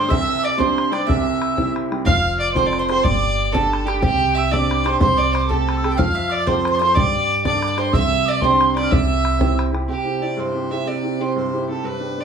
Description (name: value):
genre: celtic folk, Celtic jig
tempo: 123 BPM (dotted quarters)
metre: 6/8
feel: straight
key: C major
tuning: A4 = 442 Hz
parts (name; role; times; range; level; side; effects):
- warm fiddle; melody; 0.0-12.2 s; G4 to G5; -22 LUFS; right 1 dB; none
- bowl-back mandolin; second line; 0.0-9.5 s; G4 to F5; -26 LUFS; right 5 dB; none
- tin whistle; second line; 0.0-9.6 s; G5 to F6; -25 LUFS; left 1 dB; none
- clear upright piano; accompaniment; 0.0-12.2 s; C2 to A4; -23 LUFS; right 2 dB; none
- bodhran; percussion; 0.1-9.8 s; none; -23 LUFS; equal; none
- upright bass; bass; 2.1-9.9 s; F1 to G2; -24 LUFS; right 1 dB; none
- hand-pumped harmonium; drone; 9.9-12.2 s; C3; -28 LUFS; right 4 dB; none
room: wet small room reverb, RT60 0.5 s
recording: band playing live in one room, studio reverb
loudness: -17 LUFS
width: side -7 dB against mid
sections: 0.0-2.1 A section; 2.1-9.9 A section; 9.9-12.2 B section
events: none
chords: 0.1 Csus2; 1.1 C; 2.1 F; 3.0 Gsus2; 4.0 Csus2; 5.0 Am7/C; 6.0 F; 7.0 Gsus2; 7.9 Csus2; 8.9 C